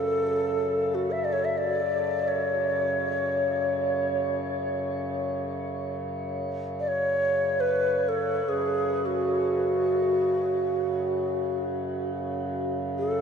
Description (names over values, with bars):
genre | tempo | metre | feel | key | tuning
world meditative, free-time meditation music | free time | none | none | F# minor | A4 = 441 Hz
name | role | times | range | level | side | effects
mellow hollow Native American-style cedar flute | melody | 0.0-13.2 s | F#4 to E5 | -25 LUFS | equal | shimmer reverb, tape echo
pedal harmonium | drone | 0.0-13.2 s | F#2 to C#3 | -32 LUFS | equal | stereo widening
room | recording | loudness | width
wet huge ambient reverb, RT60 8.4 s | in a vast, echoing space, cassette tape | -24 LUFS | side -6 dB against mid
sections
0.0-13.2 A section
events
none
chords
none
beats
free time